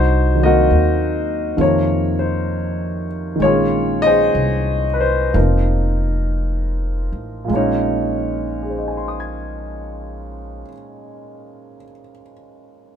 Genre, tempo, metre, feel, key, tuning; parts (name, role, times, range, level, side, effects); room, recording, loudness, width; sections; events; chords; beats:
jazz ballad; 52-69 BPM; 4/4; swing 66% on 8ths; Bb minor; A4 = 436 Hz
warm concert grand piano; accompaniment; 0.0-13.0 s; Bb2 to Ab6; -18 LUFS; equal
upright bass; bass; 0.0-10.6 s; F1 to F2; -20 LUFS; equal
little or no reverb; minimal, uncompressed stereo recording; -16 LUFS; side -8 dB against mid
0.0-7.5 A section; 7.5-12.0 B section
slowing down 0.0-7.5
0.0 Cm7b5; 1.6 F7sus4; 3.4 Bbm11; 5.3 F7sus4; 7.5 Bbm11
0.71 1.59 2.49 | 3.41 4.35 5.34 6.39 | 7.50 8.64 9.76 10.88